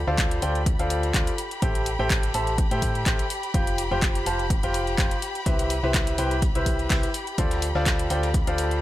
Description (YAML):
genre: piano house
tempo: 125 BPM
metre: 4/4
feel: swing 54% on 16ths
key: unclear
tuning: A4 = 439 Hz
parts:
  - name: warm studio violin section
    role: sustained chords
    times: 0.0-8.8 s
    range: G4 to B5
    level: -33 LUFS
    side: left 1 dB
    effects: sidechain pumping
  - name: solid FM bass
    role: bass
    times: 0.0-8.8 s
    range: F1 to A2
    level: -28 LUFS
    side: equal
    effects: sidechain pumping
  - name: clear concert grand piano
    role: riff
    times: 0.1-8.8 s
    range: E4 to A5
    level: -27 LUFS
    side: left 1 dB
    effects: sidechain pumping, dub echo
  - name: electronic kick drum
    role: drums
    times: 0.2-8.4 s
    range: none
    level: -25 LUFS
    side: equal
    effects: none
  - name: house drum kit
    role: drums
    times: 0.2-8.8 s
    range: handclaps, hi-hat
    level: -30 LUFS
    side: left 1 dB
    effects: none
  - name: dusty soul sampler-style drum kit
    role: drums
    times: 5.5-8.7 s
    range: hi-hat, snare drum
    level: -39 LUFS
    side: right 2 dB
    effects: none
room: light reverb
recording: none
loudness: -22 LUFS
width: side -14 dB against mid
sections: 0.0-8.8 A section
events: none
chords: 0.0 Dm7; 1.4 Am7; 3.3 Fsus2; 5.5 Cmaj7; 7.1 Dm7